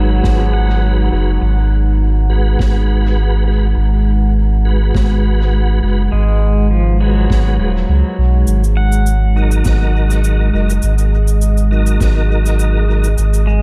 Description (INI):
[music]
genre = ambient dub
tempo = 102 BPM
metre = 4/4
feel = swing 54% on 16ths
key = G# minor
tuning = A4 = 438 Hz
[part]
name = deep dark ambient pad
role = sustained chords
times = 0.0-13.6 s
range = G#3 to A#5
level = -25 LUFS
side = equal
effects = chorus, built-in reverb
[part]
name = pedal steel guitar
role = arpeggios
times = 0.0-2.1, 6.1-13.6 s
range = E#3 to F#5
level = -26 LUFS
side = equal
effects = tape echo
[part]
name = tonewheel organ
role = stabs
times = 0.0-13.1 s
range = F#3 to B4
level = -26 LUFS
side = equal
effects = chorus vibrato, fast rotary speaker, dub echo
[part]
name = warm sub bass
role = bass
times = 0.0-13.6 s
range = D#1 to C#2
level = -15 LUFS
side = equal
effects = none
[part]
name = electronic kick drum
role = drums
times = 0.2-12.1 s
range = none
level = -20 LUFS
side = equal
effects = none
[part]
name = snare drum and cabasa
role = drums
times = 0.2-13.4 s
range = none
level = -30 LUFS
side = equal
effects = dub echo
[sound]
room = studio ambience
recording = echo-heavy mix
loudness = -14 LUFS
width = mono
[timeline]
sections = 0.0-13.6 A section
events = none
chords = 0.0 G#m7; 8.5 D#m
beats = 0.24 0.83 | 1.42 2.01 2.60 3.18 | 3.77 4.36 4.95 5.54 | 6.12 6.71 7.30 7.89 | 8.48 9.06 9.65 10.24 | 10.83 11.42 12.01 12.60 | 13.18